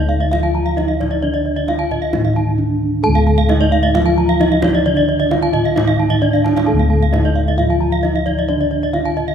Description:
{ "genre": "Balinese gamelan", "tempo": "132 BPM", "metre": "4/4", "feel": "straight", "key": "unclear", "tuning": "A4 = 440 Hz", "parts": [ { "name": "gamelan-type bronze metallophone", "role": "melody", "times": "0.0-9.3 s", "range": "D4 to A4-30c", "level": "-20 LUFS", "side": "right 3 dB", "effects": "none" }, { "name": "gamelan-type bronze metallophone", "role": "accompaniment", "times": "0.0-9.3 s", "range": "D3 to A3-30c", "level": "-22 LUFS", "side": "right 2 dB", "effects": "none" }, { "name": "gamelan-type bronze metallophone", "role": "arpeggios", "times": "0.0-9.3 s", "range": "D5 to A5-30c", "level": "-24 LUFS", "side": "right 7 dB", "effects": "none" }, { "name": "gamelan-type bossed gongs", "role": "bass", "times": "0.0-9.3 s", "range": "D2 to A4-30c", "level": "-18 LUFS", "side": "left 2 dB", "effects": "none" }, { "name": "gamelan-type bronze metallophone", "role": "arpeggios", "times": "0.1-9.3 s", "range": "D5 to Bb5-20c", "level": "-21 LUFS", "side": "left 4 dB", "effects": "none" }, { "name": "kendang", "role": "percussion", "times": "0.2-9.3 s", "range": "none", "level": "-25 LUFS", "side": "right 1 dB", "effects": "none" } ], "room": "moderate scoring stage reverb, RT60 1.8 s", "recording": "minimal, uncompressed stereo recording", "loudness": "-13 LUFS", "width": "side -8 dB against mid", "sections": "0.0-9.3 A section", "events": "drum fill 6.1-6.7", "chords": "none" }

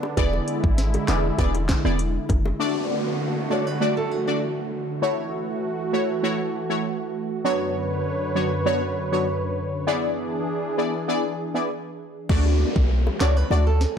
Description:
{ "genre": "dancehall", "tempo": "99 BPM", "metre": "4/4", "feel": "straight", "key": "unclear", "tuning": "A4 = 441 Hz", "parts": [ { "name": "warm analog pad", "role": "sustained chords", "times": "0.0-12.3 s", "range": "F#2 to C#5", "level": "-27 LUFS", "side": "right 1 dB", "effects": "chorus, sidechain pumping" }, { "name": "bongos", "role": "percussion", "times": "0.0-2.6, 12.3-13.7 s", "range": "none", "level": "-35 LUFS", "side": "left 5 dB", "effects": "none" }, { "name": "synth brass stab", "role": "accompaniment", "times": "0.2-13.7 s", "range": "F#3 to D5", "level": "-25 LUFS", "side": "left 1 dB", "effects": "chorus, phaser" }, { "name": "clean 808-style bass", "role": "bass", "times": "0.2-2.5, 12.3-13.9 s", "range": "E1 to D2", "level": "-21 LUFS", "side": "equal", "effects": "none" }, { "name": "island pop drum kit", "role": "drums", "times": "0.2-2.4, 12.3-14.0 s", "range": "crash cymbal, handclaps, hi-hat, kick drum, rim click, snare drum", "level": "-24 LUFS", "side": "equal", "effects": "overdrive, vintage 12-bit sampler grit" }, { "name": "downlifter", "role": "sound effects", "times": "2.6-7.4, 12.3-14.0 s", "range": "none", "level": "-33 LUFS", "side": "equal", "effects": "none" }, { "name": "flamenco guitar", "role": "arpeggios", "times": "3.5-5.0, 13.2-14.0 s", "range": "F#4 to C#5", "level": "-30 LUFS", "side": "right 6 dB", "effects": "wide subtle chorus" } ], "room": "moderate plate reverb, RT60 1.6 s, digital ambience", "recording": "dreamy mix soaked in reverb", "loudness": "-21 LUFS", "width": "side -7 dB against mid", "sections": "0.0-2.6 A section; 2.6-12.3 B section; 12.3-14.0 C section", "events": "hi-hats muted 12.3-14.0", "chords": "0.2 E7; 2.6 D; 5.0 F#m7; 7.4 Bmadd9/F#; 9.9 E7; 12.3 D" }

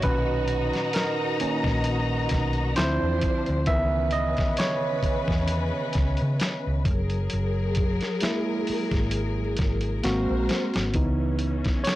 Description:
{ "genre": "R&B, neo-soul", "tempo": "66 BPM", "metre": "4/4", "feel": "swing 55% on 16ths", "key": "C# dorian", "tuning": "A4 = 440 Hz", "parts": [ { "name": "barky tine electric piano", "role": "accompaniment", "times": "0.0-12.0 s", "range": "A#2 to E5", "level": "-27 LUFS", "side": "right 2 dB", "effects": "auto-pan" }, { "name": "warm symphonic string section", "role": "sustained chords", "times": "0.0-12.0 s", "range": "C#3 to A#5", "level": "-30 LUFS", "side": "left 3 dB", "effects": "plate reverb" }, { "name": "hollow-body short-scale fingered electric bass", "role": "bass", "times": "0.0-11.6 s", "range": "F#1 to C#3", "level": "-27 LUFS", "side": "equal", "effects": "tube saturation" }, { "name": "dusty soul sampler-style drum kit", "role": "drums", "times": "0.0-12.0 s", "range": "finger snaps, hi-hat, kick drum, snare drum", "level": "-27 LUFS", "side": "equal", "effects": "none" } ], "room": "light reverb", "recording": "blown-out, overdriven recording, vinyl crackle, overdrive", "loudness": "-23 LUFS", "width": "side -15 dB against mid", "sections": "0.0-10.9 A section; 10.9-12.0 B section", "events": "tine electric piano solo 0.0-10.9, 10.9-12.0; drum fill 10.0-10.9", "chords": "0.0 Bmaj7; 2.8 Dm7; 3.7 C#m7; 6.9 F#9; 10.0 G#9; 10.9 C#m7" }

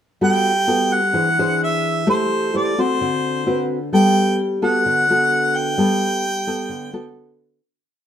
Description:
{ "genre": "bossa nova", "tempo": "129 BPM", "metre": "4/4", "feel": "straight", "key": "G major", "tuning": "A4 = 440 Hz", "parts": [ { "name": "warm harmonica", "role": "melody", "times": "0.2-7.2 s", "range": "C5 to G5", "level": "-19 LUFS", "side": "equal", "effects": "none" }, { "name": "nylon-string guitar", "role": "accompaniment", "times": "0.2-7.6 s", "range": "D3 to C5", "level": "-19 LUFS", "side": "left 1 dB", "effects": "none" } ], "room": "moderate studio reverb, RT60 0.9 s", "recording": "none", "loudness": "-16 LUFS", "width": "side -9 dB against mid", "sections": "0.2-7.6 A section", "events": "fade-out 5.8-7.6", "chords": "0.2 Gmaj9; 1.1 E7b13; 2.1 Am7; 3.0 D6; 3.9 Gmaj9" }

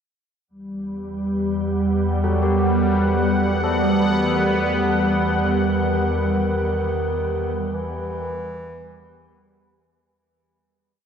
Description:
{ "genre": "dark ambient drone", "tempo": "49 BPM", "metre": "4/4", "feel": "straight", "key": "E harmonic minor", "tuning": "A4 = 440 Hz", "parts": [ { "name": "sweeping resonant pad", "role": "sustained chords", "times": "0.5-10.2 s", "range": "G3 to F#5", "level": "-24 LUFS", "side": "equal", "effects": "chorus" }, { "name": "organ-like drone", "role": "drone", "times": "1.0-10.3 s", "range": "E2 to G3", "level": "-21 LUFS", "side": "right 1 dB", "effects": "ensemble chorus, built-in reverb" }, { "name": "wind-like tuned noise texture", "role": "texture", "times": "1.3-10.2 s", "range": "B3 to B4", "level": "-33 LUFS", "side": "equal", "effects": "built-in reverb" }, { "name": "carillon bells", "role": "arpeggios", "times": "2.2-10.9 s", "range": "F#4 to A4", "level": "-28 LUFS", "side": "left 3 dB", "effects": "tape echo" }, { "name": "mellow bass clarinet", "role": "melody", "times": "5.3-9.6 s", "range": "D#3 to E3", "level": "-28 LUFS", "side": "right 2 dB", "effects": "none" } ], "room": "wet huge ambient reverb, RT60 7.4 s", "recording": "in a vast, echoing space", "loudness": "-19 LUFS", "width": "side -7 dB against mid", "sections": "0.5-10.2 A section", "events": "fade-in on synth texture 0.5-10.2; fade-out on analog synth pad 0.5-10.2; fade-out on church bells 0.5-10.2; fade-out 5.3-10.2", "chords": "0.5 Em" }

